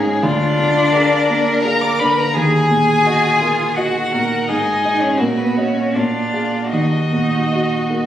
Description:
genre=classical, slow romantic movement for piano quartet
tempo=83 BPM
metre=3/4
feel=uneven beats, rubato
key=Eb minor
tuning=A4 = 441 Hz
part: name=warm violin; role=second line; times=0.0-8.1 s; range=F4 to Bb4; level=-21 LUFS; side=left 2 dB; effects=none
part: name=warm baby grand piano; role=accompaniment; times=0.0-8.1 s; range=Db2 to F5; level=-18 LUFS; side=right 1 dB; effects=none
part: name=rich violin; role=melody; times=0.2-8.1 s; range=Bb4 to D6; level=-20 LUFS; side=left 3 dB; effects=none
part: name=rich cello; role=second line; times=0.3-8.1 s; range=Bb3 to D5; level=-21 LUFS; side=right 3 dB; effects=none
room=wet recital hall reverb, RT60 1.8 s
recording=recorded on a phone in the room, studio reverb, compression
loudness=-14 LUFS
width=side -11 dB against mid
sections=0.0-8.1 A section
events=none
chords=0.2 Bb7/D; 2.3 Ebm; 4.5 Ab5; 5.2 Ebm/Bb; 5.9 Bb7; 6.7 Ebm

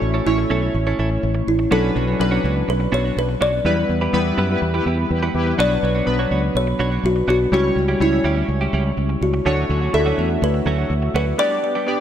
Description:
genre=pop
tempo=124 BPM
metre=4/4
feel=straight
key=B minor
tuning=A4 = 440 Hz
part: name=kalimba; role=melody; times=0.0-12.0 s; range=E4 to D5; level=-22 LUFS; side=equal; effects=ping-pong delay
part: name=chorused retro synth keys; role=accompaniment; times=0.0-12.0 s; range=F#3 to E5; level=-22 LUFS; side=left 2 dB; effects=tremolo
part: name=direct-recorded clean electric guitar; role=riff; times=0.0-11.9 s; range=F#3 to C#5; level=-27 LUFS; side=right 4 dB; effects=analog chorus, ping-pong delay
part: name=fretless electric bass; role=bass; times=0.0-11.3 s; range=A1 to F#2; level=-21 LUFS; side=equal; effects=none
part: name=analog synth brass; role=stabs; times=4.5-5.5 s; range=E4 to B4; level=-28 LUFS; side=left 2 dB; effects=chorus, ping-pong delay
room=moderate lush hall reverb, RT60 2.8 s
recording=none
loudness=-17 LUFS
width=side -9 dB against mid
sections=0.0-12.0 A section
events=band accent 3.7-5.6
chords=0.0 A; 1.7 Bmadd9; 3.7 Em; 5.6 Bmadd9; 7.5 C#dim; 9.5 Dmaj7; 11.4 G

